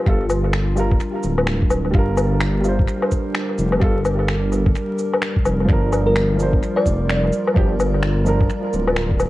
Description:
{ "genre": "future garage", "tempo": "128 BPM", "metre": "4/4", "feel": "swing 62% on 16ths", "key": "G minor", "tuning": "A4 = 440 Hz", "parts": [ { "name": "warm upright piano", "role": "accompaniment", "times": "0.0-8.5 s", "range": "F3 to C5", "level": "-26 LUFS", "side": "right 2 dB", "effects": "vintage 12-bit sampler grit, sidechain pumping, tape echo" }, { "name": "dark analog pad", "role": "sustained chords", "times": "0.0-9.3 s", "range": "G3 to D5", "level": "-25 LUFS", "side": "equal", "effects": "chorus, vintage 12-bit sampler grit, sidechain pumping" }, { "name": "dark detuned saw bass", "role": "bass", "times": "0.1-9.3 s", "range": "D1 to G1", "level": "-20 LUFS", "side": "equal", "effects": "none" }, { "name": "electronic kick drum", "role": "drums", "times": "0.1-9.2 s", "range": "none", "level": "-18 LUFS", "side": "equal", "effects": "vintage 12-bit sampler grit" }, { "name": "electronic shaker, woodblock and finger snaps", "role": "drums", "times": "0.3-9.3 s", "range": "none", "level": "-24 LUFS", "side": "left 2 dB", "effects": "vintage 12-bit sampler grit, tape echo" }, { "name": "flickering grainy texture", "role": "texture", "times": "6.7-9.3 s", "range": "Bb4", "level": "-32 LUFS", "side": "right 2 dB", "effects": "none" }, { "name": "bell-like FM electric piano", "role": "melody", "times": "6.1-7.4 s", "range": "Bb4 to D5", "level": "-25 LUFS", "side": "equal", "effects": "chorus, tape echo" } ], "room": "light reverb", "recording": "echo-heavy mix, vinyl crackle, nothing above 10.7 kHz", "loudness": "-16 LUFS", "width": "side -17 dB against mid", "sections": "0.0-9.3 A section", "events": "none", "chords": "0.0 Gm7; 5.7 Bb", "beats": "| 0.06 0.53 1.00 1.47 | 1.94 2.41 2.88 3.35 | 3.81 4.28 4.75 5.22 | 5.69 6.16 6.63 7.09 | 7.56 8.03 8.50 8.97" }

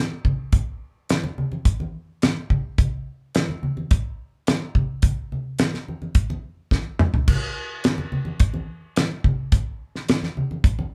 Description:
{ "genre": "rock", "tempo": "107 BPM", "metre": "4/4", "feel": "straight", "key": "none", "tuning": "none", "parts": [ { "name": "damped 70s drum kit", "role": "drums", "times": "0.2-10.8 s", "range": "crash cymbal, hi-hat, kick drum, snare drum, toms", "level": "-22 LUFS", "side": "equal", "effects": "none" }, { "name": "congas", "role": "percussion", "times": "0.2-10.9 s", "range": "none", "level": "-30 LUFS", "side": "equal", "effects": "none" } ], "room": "wet small room reverb, RT60 0.5 s", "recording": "band playing live in one room", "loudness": "-24 LUFS", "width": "mono", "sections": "0.0-10.9 A section", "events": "drum fill 6.7-7.3", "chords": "none", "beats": "| 0.54 1.10 1.66 2.22 | 2.78 3.34 3.91 4.47 | 5.03 5.59 6.15 6.71 | 7.28 7.84 8.40 8.96 | 9.52 10.08 10.64" }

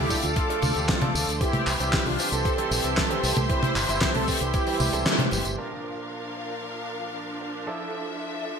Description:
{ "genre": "italo disco", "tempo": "115 BPM", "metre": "4/4", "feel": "straight", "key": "unclear", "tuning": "A4 = 440 Hz", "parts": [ { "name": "mellow synth brass", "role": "melody", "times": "0.0-5.5 s", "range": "C4 to C5", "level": "-28 LUFS", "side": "right 1 dB", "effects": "chorus, digital delay" }, { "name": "bright studio string section", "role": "sustained chords", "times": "0.0-8.6 s", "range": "F3 to D6", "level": "-32 LUFS", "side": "equal", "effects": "none" }, { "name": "fingered electric bass with an envelope filter", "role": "bass", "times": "0.0-5.6 s", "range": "G1 to D2", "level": "-31 LUFS", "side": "equal", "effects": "none" }, { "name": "bright baby grand piano", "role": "stabs", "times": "0.1-8.6 s", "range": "Bb2 to Bb4", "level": "-33 LUFS", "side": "right 4 dB", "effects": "low-pass filter, digital delay" }, { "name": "damped 70s drum kit", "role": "drums", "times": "0.1-8.6 s", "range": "crash cymbal, handclaps, hi-hat, snare drum, tambourine, toms", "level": "-26 LUFS", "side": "left 1 dB", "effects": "low-pass filter on hats, low-pass filter on toms, low-pass filter on cymbals, low-pass filter on snare, low-pass filter on perc, low-pass filter on room, gated reverb" }, { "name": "electronic kick drum", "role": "drums", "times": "0.1-4.6 s", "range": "none", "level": "-29 LUFS", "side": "equal", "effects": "none" } ], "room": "moderate plate reverb, RT60 1.2 s, small room ambience", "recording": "bright 1980s-style digital production", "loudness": "-23 LUFS", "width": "side -6 dB against mid", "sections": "0.0-5.6 A section; 5.6-8.6 B section", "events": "kick drops out 5.1-5.6; band accent 5.1", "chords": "0.0 Dm; 1.4 C; 5.6 Bb; 7.7 Dmadd9", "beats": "0.36 0.89 | 1.41 1.93 2.45 2.97 | 3.50 4.02 4.54 5.06 | 5.58 6.10 6.62 7.15 | 7.67 8.19" }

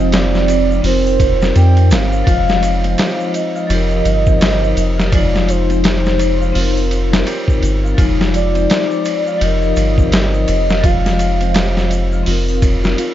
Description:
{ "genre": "trip hop", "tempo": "84 BPM", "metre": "4/4", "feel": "swing 60% on 16ths", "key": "F dorian", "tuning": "A4 = 442 Hz", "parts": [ { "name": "pure breathy sine lead", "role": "melody", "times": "0.0-12.3 s", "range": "C5 to G5", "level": "-20 LUFS", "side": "right 1 dB", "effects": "phaser, wide subtle chorus, cassette tape, tape echo" }, { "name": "vibraphone with hard mallets", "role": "accompaniment", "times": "0.0-13.1 s", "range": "F3 to Eb5", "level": "-21 LUFS", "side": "left 2 dB", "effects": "tremolo, tape echo" }, { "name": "warbly tape-like pad", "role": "sustained chords", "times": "0.0-13.1 s", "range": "C4 to Eb4", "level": "-25 LUFS", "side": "left 1 dB", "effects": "chorus, built-in reverb" }, { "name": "Celtic harp", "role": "arpeggios", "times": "0.0-13.1 s", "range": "C4 to F5", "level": "-25 LUFS", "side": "left 1 dB", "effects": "tape echo" }, { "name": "soft dub sub bass", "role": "bass", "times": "0.0-13.0 s", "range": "F1 to F2", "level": "-16 LUFS", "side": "equal", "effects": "none" }, { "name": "trip hop sampler-style drum kit", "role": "drums", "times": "0.1-13.1 s", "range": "hi-hat, kick drum, ride cymbal, snare drum", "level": "-18 LUFS", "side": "equal", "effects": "none" }, { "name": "tube shaker and triangle", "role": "percussion", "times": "0.1-13.1 s", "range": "none", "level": "-37 LUFS", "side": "left 3 dB", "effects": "none" } ], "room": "little or no reverb", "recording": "nothing above 7.6 kHz", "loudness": "-12 LUFS", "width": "side -12 dB against mid", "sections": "0.0-13.1 A section", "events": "none", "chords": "0.0 Fm7; 0.8 Cm7/F; 2.3 Fm7; 3.7 Eb/F; 5.1 Fm7; 6.6 Cm7/F; 8.0 Fm7; 9.4 Eb/F; 10.8 Fm7; 12.3 Cm7/F", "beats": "0.12 0.84 1.55 | 2.27 2.98 3.70 4.41 | 5.12 5.84 6.55 7.27 | 7.98 8.70 9.41 10.12 | 10.84 11.55 12.27 12.98" }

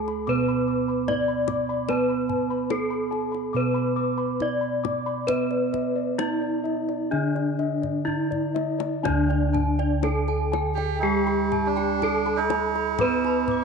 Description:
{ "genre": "Javanese gamelan", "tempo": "61-74 BPM", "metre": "4/4", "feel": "straight", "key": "D pelog barang", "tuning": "A4 = 439 Hz", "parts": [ { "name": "gamelan-type bronze metallophone", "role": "melody", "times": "0.0-13.6 s", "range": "D4 to D5", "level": "-26 LUFS", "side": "left 3 dB", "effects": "none" }, { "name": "gamelan-type bronze metallophone", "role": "accompaniment", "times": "0.0-13.6 s", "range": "D3 to B3+20c", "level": "-28 LUFS", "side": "right 15 dB", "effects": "none" }, { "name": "gamelan-type bossed gongs", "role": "arpeggios", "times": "0.0-13.6 s", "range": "D5 to D6", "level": "-33 LUFS", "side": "left 7 dB", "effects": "none" }, { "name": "gamelan-type bossed gongs", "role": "bass", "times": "0.0-13.6 s", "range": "D2 to B4+20c", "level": "-31 LUFS", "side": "left 1 dB", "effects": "none" }, { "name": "kendang", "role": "percussion", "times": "0.1-13.6 s", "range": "none", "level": "-34 LUFS", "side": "left 10 dB", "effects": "none" }, { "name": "gamelan-type bronze metallophone", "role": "arpeggios", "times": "9.0-13.6 s", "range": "D5 to D6", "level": "-32 LUFS", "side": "right 9 dB", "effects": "none" }, { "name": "melodica", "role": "second line", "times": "10.7-13.6 s", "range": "D4 to G4+30c", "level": "-27 LUFS", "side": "right 8 dB", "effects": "none" } ], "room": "wet spring reverb, RT60 2.3 s", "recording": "1960s-style stereo with parts hard left and right, nothing above 10.4 kHz", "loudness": "-22 LUFS", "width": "side -5 dB against mid", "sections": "0.0-9.0 A section; 9.0-13.6 B section", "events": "drum fill 7.8-9.0", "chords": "none", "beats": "0.27 1.08 | 1.89 2.71 3.55 4.41 | 5.29 6.20 7.12 8.07 | 9.04 10.03 11.02 12.01 | 13.00" }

